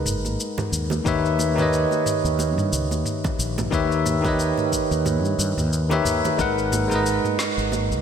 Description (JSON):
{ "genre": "sunset chillout", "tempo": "90 BPM", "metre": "4/4", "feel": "swing 57% on 16ths", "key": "unclear", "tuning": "A4 = 440 Hz", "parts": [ { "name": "bell-like tine electric piano", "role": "accompaniment", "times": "0.0-8.0 s", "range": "D#3 to F#5", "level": "-22 LUFS", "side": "moving between left 5 dB and right 5 dB", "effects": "auto-pan, tape echo, slapback echo" }, { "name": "mellow fretless electric bass", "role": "bass", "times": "0.0-8.0 s", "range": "F#1 to G2", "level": "-25 LUFS", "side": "equal", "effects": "none" }, { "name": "smooth R&B drum kit", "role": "drums", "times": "0.1-8.0 s", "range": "cabasa, snare drum, toms", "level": "-28 LUFS", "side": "equal", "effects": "studio reverb" }, { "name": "congas", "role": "percussion", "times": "0.2-7.9 s", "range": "none", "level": "-33 LUFS", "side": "right 5 dB", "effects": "slapback echo" }, { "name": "electronic kick drum", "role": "drums", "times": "1.1-6.5 s", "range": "none", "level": "-28 LUFS", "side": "equal", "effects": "studio reverb" } ], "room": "wet lush hall reverb, RT60 2.7 s", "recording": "big arena sound", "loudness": "-20 LUFS", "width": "side -8 dB against mid", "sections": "0.0-8.0 A section", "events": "none", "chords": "0.0 G#m9; 1.1 D#7b9b13; 6.4 G#m9" }